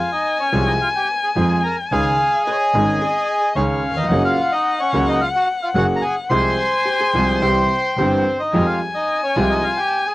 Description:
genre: tango.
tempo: 109 BPM.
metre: 4/4.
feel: rubato.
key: F minor.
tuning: A4 = 439 Hz.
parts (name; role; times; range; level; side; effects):
bandoneon; melody; 0.0-10.1 s; C4 to C6; -19 LUFS; equal; none.
rich violin; second line; 0.0-10.1 s; Eb5 to Ab5; -22 LUFS; left 3 dB; cassette tape.
clear concert grand piano; accompaniment; 0.5-9.6 s; G1 to Ab4; -21 LUFS; right 1 dB; cassette tape.
rich double bass; bass; 0.5-9.6 s; Gb1 to F2; -23 LUFS; equal; none.
archtop guitar, miked and amplified; second line; 2.5-3.4, 6.9-7.8 s; G4 to Db5; -30 LUFS; equal; cassette tape.
warm chamber string section; stabs; 8.5-9.6 s; G3 to F4; -28 LUFS; equal; cassette tape.
room: light reverb.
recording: home recording on cassette, vinyl crackle.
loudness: -16 LUFS.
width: side -18 dB against mid.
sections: 0.0-10.1 A section.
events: none.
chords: 0.0 Fm; 1.9 Dbsus2; 4.1 Gbadd9; 6.3 Fm/C; 7.4 C; 8.5 Fmadd9.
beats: 0.25 0.81 1.36 | 1.91 2.46 3.01 3.56 | 4.11 4.66 5.21 5.76 | 6.31 6.87 7.42 7.98 | 8.54 9.10 9.65.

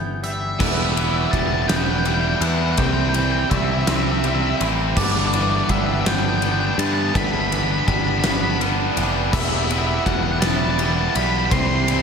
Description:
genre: post-rock.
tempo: 55 BPM (dotted quarters).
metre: 6/8.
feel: straight.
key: unclear.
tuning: A4 = 440 Hz.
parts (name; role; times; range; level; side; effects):
octave-fuzz lead guitar; melody; 0.0-12.0 s; D5 to C6; -26 LUFS; left 1 dB; distortion, slapback echo.
pedal steel guitar; sustained chords; 0.0-12.0 s; G3 to C6; -36 LUFS; left 3 dB; none.
twangy electric guitar; arpeggios; 0.0-12.0 s; E2 to C4; -28 LUFS; left 2 dB; wide subtle chorus, slapback echo.
growling picked electric bass; bass; 0.0-12.0 s; E1 to G2; -24 LUFS; equal; overdrive.
huge arena drum kit; drums; 0.2-12.0 s; crash cymbal, hi-hat, kick drum, ride cymbal, snare drum; -23 LUFS; equal; none.
overdriven electric guitar; riff; 0.6-12.0 s; G2 to E4; -25 LUFS; right 10 dB; spring reverb, slapback echo.
sludgy distorted guitar; riff; 0.6-12.0 s; G2 to E4; -26 LUFS; left 11 dB; overdrive.
room: moderate scoring stage reverb, RT60 1.8 s, small room reverb.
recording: big arena sound.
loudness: -17 LUFS.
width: side -6 dB against mid.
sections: 0.6-12.0 A section.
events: none.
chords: 0.0 G6; 0.6 Em; 2.8 C; 5.0 G6; 9.3 Em; 11.5 C.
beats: | 0.60 1.70 | 2.79 3.88 | 4.97 6.06 | 7.15 8.24 | 9.33 10.43 | 11.52.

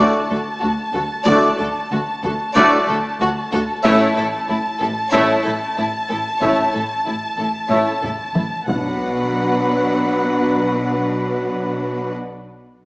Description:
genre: cinematic, epic orchestral film score.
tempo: 93 BPM.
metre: 4/4.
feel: straight.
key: B minor.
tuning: A4 = 439 Hz.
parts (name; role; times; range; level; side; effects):
dark symphonic violin section; melody; 0.0-12.2 s; F#5 to A5; -24 LUFS; equal; none.
warm symphonic violin section; second line; 0.0-12.1 s; E4 to D5; -26 LUFS; equal; none.
rich studio viola section; accompaniment; 0.0-12.1 s; D4 to F#4; -27 LUFS; equal; none.
bright trombone section; sustained chords; 0.0-12.1 s; A2 to A3; -23 LUFS; equal; none.
dark French horn section; sustained chords; 0.0-12.1 s; B3 to F#4; -25 LUFS; left 1 dB; none.
dark trumpet; stabs; 0.0-12.1 s; B4 to E5; -21 LUFS; equal; none.
warm symphonic cello section; bass; 0.0-12.1 s; D2 to B2; -24 LUFS; equal; none.
warm symphonic double bass section; bass; 0.0-12.1 s; A1 to D2; -29 LUFS; equal; none.
taiko ensemble; drums; 1.3-9.9 s; none; -24 LUFS; equal; none.
sub drop; sound effects; 8.7-12.2 s; none; -34 LUFS; equal; none.
room: wet scoring stage reverb, RT60 1.5 s.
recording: small speaker sound.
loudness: -16 LUFS.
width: side -25 dB against mid.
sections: 0.0-9.0 A section; 9.0-11.6 B section.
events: drum fill 8.0-9.0; impact 9.0-11.6.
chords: 0.0 D; 3.8 A; 8.7 Bm.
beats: 0.63 | 1.27 1.92 2.56 3.20 | 3.85 4.49 5.13 5.78 | 6.42 7.06 7.71 8.35 | 8.99 9.64 10.28 10.92.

